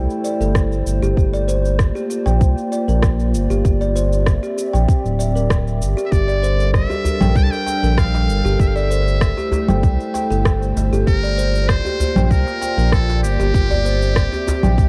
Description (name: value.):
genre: organic downtempo.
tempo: 97 BPM.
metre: 4/4.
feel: straight.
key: unclear.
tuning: A4 = 440 Hz.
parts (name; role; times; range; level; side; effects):
warbly tape-like pad; sustained chords; 0.0-14.9 s; G3 to E5; -28 LUFS; equal; chorus, built-in reverb, sidechain pumping.
kalimba; arpeggios; 0.0-14.9 s; G4 to G5; -26 LUFS; equal; delay.
round analog bass; bass; 0.0-14.9 s; D1 to C2; -20 LUFS; equal; tube saturation.
electronic shaker, rim click and congas; drums; 0.1-14.9 s; none; -25 LUFS; equal; none.
electronic kick drum; drums; 0.6-14.9 s; none; -19 LUFS; equal; none.
trumpet with metal mute; melody; 6.1-14.9 s; G4 to A5; -28 LUFS; equal; delay.
djembe; percussion; 6.9-14.6 s; none; -27 LUFS; equal; none.
room: studio ambience.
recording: worn, warbling old tape, cassette tape, warbly pitch drift.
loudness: -18 LUFS.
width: mono.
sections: 0.0-14.9 A section.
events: none.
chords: 0.0 Am7; 1.2 Bbadd9/G; 3.6 Cadd9/G; 6.1 Gmadd9; 8.6 Am7/G; 11.1 Bbadd9/G; 13.5 Cadd9/G.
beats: 0.56 | 1.17 1.79 2.41 3.03 | 3.65 4.27 4.88 5.50 | 6.12 6.74 7.36 7.98 | 8.60 9.21 9.83 10.45 | 11.07 11.69 12.31 12.93 | 13.54 14.16 14.78.